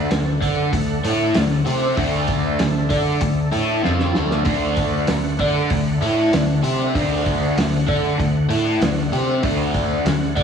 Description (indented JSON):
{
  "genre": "blues rock power trio and southern rock",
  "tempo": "96 BPM",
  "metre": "4/4",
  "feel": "straight",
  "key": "D mixolydian",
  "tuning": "A4 = 440 Hz",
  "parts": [
    { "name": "overdriven tonewheel organ", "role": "sustained chords", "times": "0.0-10.4 s", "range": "A3 to F#5", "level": "-29 LUFS", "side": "right 4 dB", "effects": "slow rotary speaker, chorus vibrato" },
    { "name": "crunchy overdriven guitar", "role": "riff", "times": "0.0-10.4 s", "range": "D3 to D5", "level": "-19 LUFS", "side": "equal", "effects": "phaser, slapback echo" },
    { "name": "vintage muted fingered electric bass", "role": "bass", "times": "0.0-10.4 s", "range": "D2 to D3", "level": "-25 LUFS", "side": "equal", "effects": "none" },
    { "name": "vintage drum kit", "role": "drums", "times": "0.1-10.4 s", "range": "hi-hat, kick drum, snare drum", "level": "-24 LUFS", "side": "equal", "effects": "none" }
  ],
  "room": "moderate lush hall reverb, RT60 1.9 s, small room ambience",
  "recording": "big arena sound",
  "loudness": "-17 LUFS",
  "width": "side -7 dB against mid",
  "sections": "0.0-10.4 A section",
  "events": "drum fill 3.8-4.5",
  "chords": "0.0 D"
}